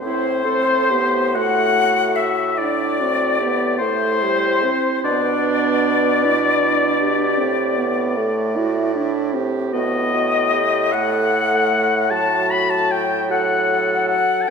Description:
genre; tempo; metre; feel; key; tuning
classical, slow romantic movement for wind quintet; 44-52 BPM (dotted quarters); 12/8; rubato; unclear; A4 = 440 Hz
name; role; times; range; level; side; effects
silver concert flute; melody; 0.0-14.5 s; C5 to B5; -22 LUFS; left 7 dB; none
clear oboe; second line; 0.0-14.5 s; C5 to B5; -21 LUFS; left 3 dB; none
clear clarinet; accompaniment; 0.0-14.5 s; D4 to A4; -25 LUFS; right 6 dB; none
mellow French horn; accompaniment; 0.0-14.5 s; F#3 to E4; -24 LUFS; right 2 dB; none
clear bassoon; bass; 0.0-14.2 s; A2 to B2; -24 LUFS; right 3 dB; none
room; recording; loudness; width
wet concert hall reverb, RT60 2.2 s; none; -16 LUFS; side -6 dB against mid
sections
0.0-14.5 A section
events
none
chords
0.0 Am7; 5.0 Bmadd11; 7.4 Am; 9.7 B7/A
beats
| 0.02 1.35 2.58 3.80 | 5.04 6.24 7.39 8.57 | 9.74 10.93 12.12 13.31 | 14.49

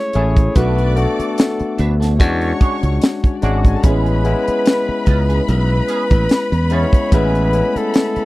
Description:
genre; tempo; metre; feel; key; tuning
lush 1970s-style soul; 73 BPM; 4/4; swing 54% on 16ths; A major; A4 = 440 Hz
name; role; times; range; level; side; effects
warm flugelhorn; melody; 0.0-8.2 s; A4 to C#5; -21 LUFS; equal; none
rich studio string section; second line; 0.0-8.2 s; C#4 to E6; -28 LUFS; left 1 dB; none
barky tine electric piano; accompaniment; 0.0-8.2 s; G#3 to G#4; -21 LUFS; left 4 dB; overdrive
tight funk drum kit; drums; 0.1-8.2 s; hi-hat, kick drum, snare drum; -13 LUFS; equal; none
clean electric guitar; riff; 0.2-8.2 s; A3 to D5; -27 LUFS; right 7 dB; wah, ensemble chorus
modern bright fingered electric bass; bass; 0.2-8.2 s; G#1 to E2; -16 LUFS; equal; none
room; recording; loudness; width
little or no reverb; dry, close 1970s-style studio recording; -13 LUFS; side -18 dB against mid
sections
0.0-8.2 A section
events
none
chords
0.0 F#m9 (rootless); 0.6 Bm7; 2.2 E13; 3.8 Amaj9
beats
| 0.56 1.38 2.20 3.02 | 3.84 4.66 5.48 6.30 | 7.12 7.94

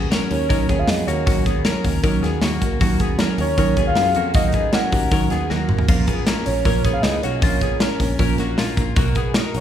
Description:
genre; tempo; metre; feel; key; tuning
jangly indie pop; 156 BPM; 4/4; straight; Eb minor; A4 = 440 Hz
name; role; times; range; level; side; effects
picked steel-string acoustic guitar; accompaniment; 0.0-9.6 s; Bb2 to Bb4; -26 LUFS; right 4 dB; none
twelve-string electric guitar; arpeggios; 0.0-9.6 s; Bb3 to Bb4; -26 LUFS; left 4 dB; none
picked electric bass; bass; 0.0-9.6 s; Ab1 to Eb3; -25 LUFS; equal; none
modern studio drum kit; drums; 0.1-9.6 s; crash cymbal, hi-hat, kick drum, snare drum, toms; -20 LUFS; equal; none
warbly nostalgic lead; melody; 0.3-9.6 s; Db5 to Gb5; -23 LUFS; right 1 dB; chorus
room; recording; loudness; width
moderate scoring stage reverb, RT60 1.9 s; recorded in a church or concert hall; -17 LUFS; side -10 dB against mid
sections
0.0-9.6 A section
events
drum fill 5.5-5.9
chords
0.0 Ebm7; 5.9 Bbm; 9.0 Bmaj7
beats
0.11 0.50 0.88 | 1.27 1.65 2.04 2.42 | 2.81 3.19 3.58 3.96 | 4.35 4.73 5.12 5.50 | 5.89 6.27 6.66 7.04 | 7.43 7.81 8.20 8.58 | 8.96 9.35

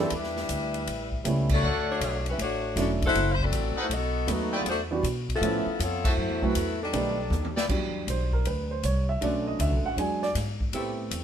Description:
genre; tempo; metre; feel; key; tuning
jazz, big band swing; 158 BPM; 4/4; swing 66% on 8ths; E minor; A4 = 440 Hz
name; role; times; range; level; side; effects
warm saxophone section; melody; 0.0-7.5 s; F3 to F#5; -29 LUFS; left 3 dB; none
warm upright piano; accompaniment; 0.0-11.2 s; D3 to G#5; -30 LUFS; right 4 dB; none
upright bass; bass; 0.0-11.2 s; E1 to B2; -30 LUFS; equal; none
swinging big-band drum kit; drums; 0.1-11.2 s; crash cymbal, hi-hat, kick drum, ride cymbal, snare drum, toms; -33 LUFS; equal; none
bright trumpet section; stabs; 1.6-7.7 s; D4 to A5; -33 LUFS; left 1 dB; none
edgy saxophone section; sustained chords; 9.2-11.2 s; C3 to F#4; -38 LUFS; equal; none
room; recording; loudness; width
light reverb; minimal, uncompressed stereo recording; -25 LUFS; side -9 dB against mid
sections
0.0-7.7 A section; 7.7-11.2 B section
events
band accent 1.4, 6.0; drum fill 7.3-7.7; upright piano solo 7.7-11.2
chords
0.1 Em7; 0.9 A7; 1.6 Dmaj7; 3.1 F#m7b5; 3.9 B7; 4.7 Em7; 5.4 C#7alt; 6.2 F#m7b5; 6.9 B7alt; 7.7 Em7; 9.2 Bm7; 10.0 E7; 10.7 Am7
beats
| 0.11 0.49 0.87 1.25 | 1.63 2.01 2.39 2.77 | 3.15 3.52 3.90 4.28 | 4.66 5.04 5.42 5.80 | 6.18 6.56 6.94 7.32 | 7.70 8.08 8.46 8.84 | 9.22 9.60 9.98 10.36 | 10.74 11.12

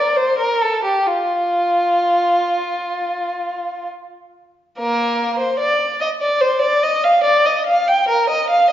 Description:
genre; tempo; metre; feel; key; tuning
classical, baroque-style suite movement for unaccompanied violin; 63-74 BPM; 4/4; rubato; F major, Bb major from 4.8 s; A4 = 440 Hz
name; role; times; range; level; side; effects
warm violin; solo; 0.0-8.7 s; Bb3 to G5; -15 LUFS; equal; none
room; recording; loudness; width
wet recital hall reverb, RT60 1.4 s; heard from further back in the room, nothing above 7.5 kHz; -15 LUFS; side -11 dB against mid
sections
0.0-4.8 A section; 4.8-8.7 A section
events
none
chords
none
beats
0.16 | 1.06 2.00 2.95 3.87 | 4.78 5.60 6.42 7.26 | 8.09

